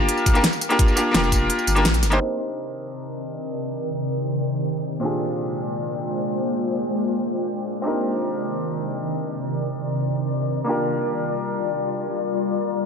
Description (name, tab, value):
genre	liquid drum and bass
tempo	free time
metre	none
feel	none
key	C minor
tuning	A4 = 445 Hz
part	bright concert grand piano	accompaniment	0.0-12.9 s	Bb2 to C5	-25 LUFS	equal	ping-pong delay
part	saturated sub bass	bass	0.0-2.2 s	F1 to Bb1	-22 LUFS	equal	none
part	pop drum kit	drums	0.1-2.2 s	hi-hat, snare drum, tambourine	-23 LUFS	equal	small room reverb
part	electronic kick drum	drums	0.3-1.4 s	none	-19 LUFS	equal	small room reverb
part	glassy FM pad	sustained chords	2.8-12.9 s	C3 to G5	-24 LUFS	left 1 dB	ensemble chorus, built-in reverb, sidechain pumping
room	light reverb, digital ambience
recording	low-pass filter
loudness	-21 LUFS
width	side -6 dB against mid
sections	0.0-2.2 A section; 2.2-12.9 B section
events	kick drops out 1.5-2.2; band accent 1.9; filter sweep on ambient pad 2.2-12.9; filter sweep 2.2-12.9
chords	0.0 Gm7; 2.2 Cm9; 5.0 Bb13; 7.9 Cm9; 10.7 Gm7